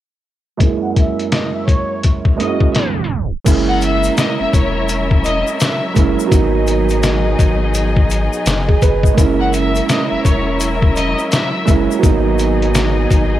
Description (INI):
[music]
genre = hip hop, boom-bap hip-hop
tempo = 84 BPM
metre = 4/4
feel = swing 62% on 16ths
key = unclear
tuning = A4 = 440 Hz
[part]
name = dark grand piano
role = accompaniment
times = 0.6-13.4 s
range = F#2 to D#5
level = -18 LUFS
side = right 7 dB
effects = high-pass filter, low-pass filter, cassette tape
[part]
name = trip hop sampler-style drum kit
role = drums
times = 0.6-13.3 s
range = crash cymbal, hi-hat, kick drum, snare drum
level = -15 LUFS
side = left 1 dB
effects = cassette tape
[part]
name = bright studio violin section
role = melody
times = 0.8-11.6 s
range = C#5 to F#5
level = -22 LUFS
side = left 2 dB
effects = high-pass filter, low-pass filter, analog delay
[part]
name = clear studio string section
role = sustained chords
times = 3.5-13.4 s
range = B2 to E5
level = -21 LUFS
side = left 2 dB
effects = high-pass filter, low-pass filter, cassette tape
[part]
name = soft dub sub bass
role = bass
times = 3.5-13.4 s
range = E1 to G#1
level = -19 LUFS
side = left 1 dB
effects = none
[part]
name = egg shaker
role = percussion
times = 3.5-13.3 s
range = none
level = -31 LUFS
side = left 13 dB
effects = none
[sound]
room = small room reverb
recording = home recording on cassette, tape stop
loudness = -13 LUFS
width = side -13 dB against mid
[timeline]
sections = 0.6-3.5 A section; 3.5-13.4 B section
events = filter sweep 0.6-3.5; tape stop 2.7-3.5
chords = 0.6 F#7; 6.3 G#m7; 9.2 F#7; 12.0 G#m7